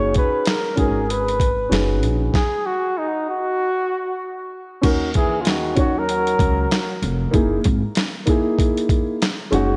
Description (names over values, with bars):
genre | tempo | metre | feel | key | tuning
hip hop, jazz-hop | 96 BPM | 4/4 | swing 60% on 16ths | unclear | A4 = 441 Hz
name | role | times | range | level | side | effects
mellow flugelhorn | melody | 0.0-7.0 s | D#4 to C#5 | -25 LUFS | equal | tape echo
dark grand piano | accompaniment | 0.0-9.8 s | G#3 to C#5 | -24 LUFS | equal | none
upright bass | bass | 0.0-9.8 s | E#1 to D#2 | -26 LUFS | equal | none
boom bap sampler-style drum kit | drums | 0.1-9.7 s | crash cymbal, hi-hat, kick drum, snare drum | -23 LUFS | equal | vintage 12-bit sampler grit
bright trombone | second line | 5.1-7.0 s | C#3 to F#3 | -30 LUFS | equal | tape echo
room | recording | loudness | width
moderate lush hall reverb, RT60 1.7 s | dreamy mix soaked in reverb | -20 LUFS | mono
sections
0.0-4.8 A section; 4.8-9.8 B section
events
stop 2.3-4.8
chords
0.0 B69/F#; 2.3 N.C.; 4.8 D#m7; 7.3 F#13 (rootless)